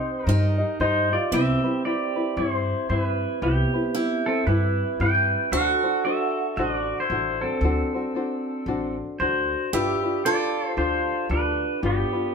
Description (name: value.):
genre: Hawaiian.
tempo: 114 BPM.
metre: 4/4.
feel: swing 59% on 8ths.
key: C major.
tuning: A4 = 440 Hz.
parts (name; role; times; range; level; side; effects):
pedal steel guitar; melody; 0.0-12.3 s; B3 to G5; -25 LUFS; equal; none.
picked acoustic archtop guitar; second line; 0.0-12.3 s; C4 to A4; -29 LUFS; right 6 dB; none.
tenor ukulele; accompaniment; 0.0-12.3 s; C4 to Eb5; -28 LUFS; left 3 dB; none.
upright bass; bass; 0.3-12.0 s; G1 to G2; -26 LUFS; equal; none.
room: wet stone room reverb, RT60 1.0 s.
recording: band playing live in one room.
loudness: -21 LUFS.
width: side -6 dB against mid.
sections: 0.0-1.3 A section; 1.3-12.3 B section.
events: none.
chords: 0.0 Cm; 1.3 Cmaj7; 5.5 D7; 9.7 G7.